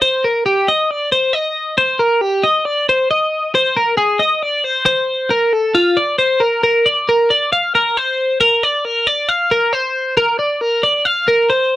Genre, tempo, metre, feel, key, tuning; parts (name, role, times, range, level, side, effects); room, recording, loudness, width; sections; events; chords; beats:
rock; 136 BPM; 4/4; straight; Bb major; A4 = 440 Hz
twelve-string electric guitar; solo; 0.0-11.8 s; F4 to F5; -13 LUFS; equal
light reverb; dark, warm production; -13 LUFS; side -15 dB against mid
0.0-6.6 A section; 6.6-11.8 B section
0.02 0.46 0.90 | 1.34 1.78 2.22 2.67 | 3.10 3.55 3.99 4.43 | 4.87 5.31 5.75 6.20 | 6.64 7.08 7.52 7.96 | 8.40 8.85 9.29 9.73 | 10.17 10.61 11.05 11.49